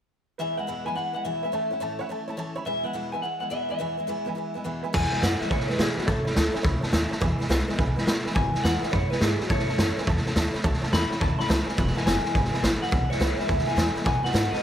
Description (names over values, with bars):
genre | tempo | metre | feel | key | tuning
rockabilly | 211 BPM | 4/4 | swing 65% on 8ths | E major | A4 = 438 Hz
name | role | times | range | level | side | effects
electric guitar through a small old amp | melody | 0.4-14.6 s | F#4 to B5 | -29 LUFS | equal | spring reverb, tape echo
honky-tonk upright piano | accompaniment | 0.4-14.6 s | B4 to B5 | -36 LUFS | right 8 dB | none
picked steel-string acoustic guitar | accompaniment | 0.4-14.6 s | E2 to F#4 | -34 LUFS | left 3 dB | none
upright bass | bass | 4.9-14.5 s | E1 to B2 | -28 LUFS | equal | none
raw garage drum kit | drums | 4.9-14.6 s | crash cymbal, hi-hat, kick drum, snare drum | -24 LUFS | equal | none
room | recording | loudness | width
light reverb | none | -23 LUFS | side -10 dB against mid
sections
0.4-4.9 A section; 4.9-14.6 B section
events
none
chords
0.4 E; 1.5 A; 2.7 E; 6.1 A; 7.2 E; 9.5 A; 11.8 E; 14.1 B